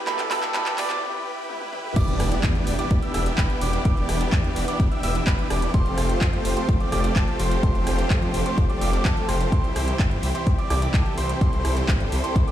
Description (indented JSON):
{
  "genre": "EDM, festival progressive house",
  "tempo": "127 BPM",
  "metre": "4/4",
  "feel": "straight",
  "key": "unclear",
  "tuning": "A4 = 440 Hz",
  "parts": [
    { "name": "trumpet with cup mute", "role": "melody", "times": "0.0-1.0 s", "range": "A4 to D5", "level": "-31 LUFS", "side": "equal", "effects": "dub echo" },
    { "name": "felt-muted upright piano", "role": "accompaniment", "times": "0.0-2.0 s", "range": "B2 to G4", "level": "-36 LUFS", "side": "right 1 dB", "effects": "sidechain pumping, dub echo" },
    { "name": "bright studio string section", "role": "sustained chords", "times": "0.0-12.5 s", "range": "D3 to A4", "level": "-32 LUFS", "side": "left 1 dB", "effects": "sidechain pumping" },
    { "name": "clear concert grand piano", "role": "arpeggios", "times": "0.0-12.5 s", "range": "A5 to E6", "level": "-32 LUFS", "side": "right 4 dB", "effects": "sidechain pumping, dub echo" },
    { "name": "supersaw chords", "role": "riff", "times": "0.0-12.5 s", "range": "A3 to E5", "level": "-28 LUFS", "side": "equal", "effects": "sidechain pumping, dub echo" },
    { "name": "riser, swell and impact", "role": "sound effects", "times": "0.0-3.9 s", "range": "none", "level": "-32 LUFS", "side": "equal", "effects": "none" },
    { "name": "big-room dance drum kit", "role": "drums", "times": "0.1-12.5 s", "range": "crash cymbal, handclaps, hi-hat, rim click, toms", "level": "-31 LUFS", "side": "equal", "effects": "none" },
    { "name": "detuned saw bass", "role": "bass", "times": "2.0-12.4 s", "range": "E1 to F2", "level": "-26 LUFS", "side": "equal", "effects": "sidechain pumping" },
    { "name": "electronic kick drum", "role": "drums", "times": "2.0-12.5 s", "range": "none", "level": "-21 LUFS", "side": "equal", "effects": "overdrive" }
  ],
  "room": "light reverb, studio reverb",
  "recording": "played on a big sound system in a bare room, stone room reverb, high-pass filter",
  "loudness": "-20 LUFS",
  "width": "side -12 dB against mid",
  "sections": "0.0-2.0 A section; 2.0-12.5 B section",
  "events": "build-up 0.0-2.0; drum fill 0.0-1.0, 1.5-2.0; riser 0.0-1.0; break 1.0-2.0; swell 1.0-2.0; drop 2.0-12.5; impact 2.0-3.9",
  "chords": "0.0 Gadd9; 2.0 Em7; 5.7 Fadd9; 9.5 C",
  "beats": "| 0.07 0.55 1.02 1.49 | 1.96 2.44 2.91 3.38 | 3.85 4.33 4.80 5.27 | 5.74 6.21 6.69 7.16 | 7.63 8.10 8.58 9.05 | 9.52 9.99 10.47 10.94 | 11.41 11.88 12.36"
}